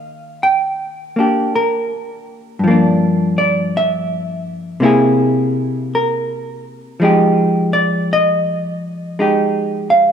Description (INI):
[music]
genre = jazz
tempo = 55 BPM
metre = 4/4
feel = swing 66% on 8ths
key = unclear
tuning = A4 = 436 Hz
[part]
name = vintage hollow-body jazz guitar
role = solo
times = 0.0-10.1 s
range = G2 to G5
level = -14 LUFS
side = equal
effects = none
[sound]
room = moderate echo chamber reverb, RT60 2.5 s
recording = dark, warm production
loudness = -14 LUFS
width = side -8 dB against mid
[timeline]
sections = 0.0-10.1 A section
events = none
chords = 0.0 Ebmaj7; 2.6 Gm7; 4.8 Caug7; 7.0 Fm9